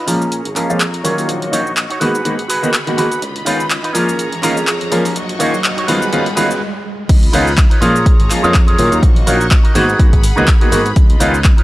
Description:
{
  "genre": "filtered disco house",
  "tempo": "124 BPM",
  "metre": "4/4",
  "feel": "swing 56% on 16ths",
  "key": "G# dorian",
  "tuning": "A4 = 441 Hz",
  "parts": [
    { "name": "bright symphonic string section", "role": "sustained chords", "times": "0.0-11.6 s", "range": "E#4 to C#6", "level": "-25 LUFS", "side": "equal", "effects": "sidechain pumping, low-pass filter" },
    { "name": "electric guitar with an envelope filter", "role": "riff", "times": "0.0-11.6 s", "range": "C#4 to D#5", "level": "-19 LUFS", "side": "right 2 dB", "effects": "sidechain pumping, low-pass filter" },
    { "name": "riser", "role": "sound effects", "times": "2.6-6.6 s", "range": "none", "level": "-27 LUFS", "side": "right 1 dB", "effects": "none" },
    { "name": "clear grand piano", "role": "accompaniment", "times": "0.1-11.3 s", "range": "D#3 to F#4", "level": "-18 LUFS", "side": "equal", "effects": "phaser, vintage 12-bit sampler grit, sidechain pumping, low-pass filter" },
    { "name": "modern bright fingered electric bass", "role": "bass", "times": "0.1-11.5 s", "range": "G#1 to A#2", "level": "-22 LUFS", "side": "equal", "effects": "sidechain pumping, high-pass filter, low-pass filter" },
    { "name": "punchy analog drum machine", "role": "drums", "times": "0.1-11.6 s", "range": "crash cymbal, handclaps, hi-hat, shaker", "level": "-20 LUFS", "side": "equal", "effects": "overdrive, sidechain pumping on perc, high-pass filter on perc, sidechain pumping on hats, high-pass filter on hats, high-pass filter on snare, sidechain pumping on cymbals, high-pass filter on cymbals" },
    { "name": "electronic kick drum", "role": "drums", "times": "7.1-11.6 s", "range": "none", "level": "-10 LUFS", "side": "equal", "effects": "overdrive" }
  ],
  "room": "little or no reverb",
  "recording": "dry, gritty hardware recording, cassette tape",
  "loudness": "-11 LUFS",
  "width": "side -17 dB against mid",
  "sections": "0.0-7.1 A section; 7.1-11.6 B section",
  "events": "build-up 0.0-7.1; filter sweep 0.0-7.1; riser 2.6-6.6; stop 6.6-7.1; drop 7.1-11.6",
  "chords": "0.1 A#m7; 1.3 D#m7/A#; 2.0 G#m7; 3.2 C#9; 3.9 A#m7; 5.2 D#m7/A#; 5.9 G#m7; 7.1 C#9; 7.8 A#m7; 9.0 D#m7/A#; 9.8 G#m7; 11.0 C#9"
}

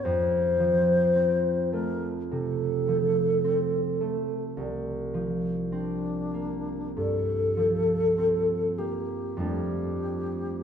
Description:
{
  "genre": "classical, impressionist duo for alto flute and harp",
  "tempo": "45-55 BPM",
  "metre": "4/4",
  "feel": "rubato",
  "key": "F major",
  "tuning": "A4 = 441 Hz",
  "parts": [
    { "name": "mellow alto flute", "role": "melody", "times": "0.0-10.6 s", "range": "D4 to C5", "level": "-26 LUFS", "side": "left 1 dB", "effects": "none" },
    { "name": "concert harp", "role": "accompaniment", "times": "0.0-10.6 s", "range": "C2 to D4", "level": "-28 LUFS", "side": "right 2 dB", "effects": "none" }
  ],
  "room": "moderate recital hall reverb, RT60 1.6 s",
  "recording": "none",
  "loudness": "-24 LUFS",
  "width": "side -8 dB against mid",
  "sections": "0.0-10.6 A section",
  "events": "none",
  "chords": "0.0 F; 4.6 C9sus4; 9.4 F69"
}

